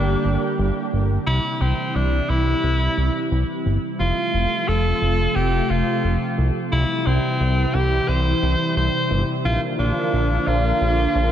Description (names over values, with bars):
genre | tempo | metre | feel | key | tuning
synthwave | 88 BPM | 4/4 | straight | unclear | A4 = 435 Hz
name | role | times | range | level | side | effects
clear tenor saxophone | melody | 0.0-11.3 s | C4 to C5 | -23 LUFS | equal | tape echo
analog string pad | sustained chords | 0.0-11.3 s | C3 to G4 | -23 LUFS | equal | ensemble chorus
fat analog bass | bass | 0.0-11.3 s | F1 to C2 | -20 LUFS | equal | tube saturation
room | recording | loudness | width
wet cathedral reverb, RT60 5.9 s | dreamy mix soaked in reverb | -18 LUFS | side -10 dB against mid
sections
0.0-1.3 A section; 1.3-11.3 B section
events
filter sweep on analog synth pad 1.3-11.3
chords
0.0 Gm; 1.3 C; 4.0 F; 6.7 C; 9.4 Bb